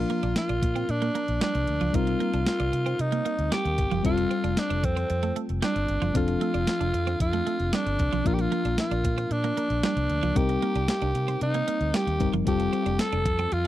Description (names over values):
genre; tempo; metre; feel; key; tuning
1980s-style pop; 114 BPM; 4/4; straight; Bb major; A4 = 439 Hz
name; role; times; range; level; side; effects
raspy alto saxophone; melody; 0.0-13.7 s; C4 to A4; -28 LUFS; equal; none
mellow FM electric piano; accompaniment; 0.0-13.7 s; F3 to Bb4; -31 LUFS; left 5 dB; chorus
vintage muted fingered electric bass; bass; 0.0-13.7 s; F1 to C3; -29 LUFS; equal; none
twelve-string electric guitar; riff; 0.1-13.6 s; F3 to D4; -33 LUFS; right 7 dB; analog chorus
clean 12-bit digital drum machine; drums; 0.1-13.7 s; hi-hat, kick drum, snare drum; -29 LUFS; equal; none
room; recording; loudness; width
little or no reverb; dry, close 1970s-style studio recording; -23 LUFS; side -14 dB against mid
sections
0.0-13.7 A section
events
none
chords
0.0 Bb; 1.9 Cm7; 4.0 Fadd9; 6.2 Dm7/F; 8.3 Bb; 10.4 Cm7; 12.5 Fadd9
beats
0.36 0.89 1.42 | 1.94 2.47 2.99 3.52 | 4.05 4.57 5.10 5.62 | 6.15 6.68 7.20 7.73 | 8.26 8.78 9.31 9.84 | 10.36 10.89 11.41 11.94 | 12.47 12.99 13.52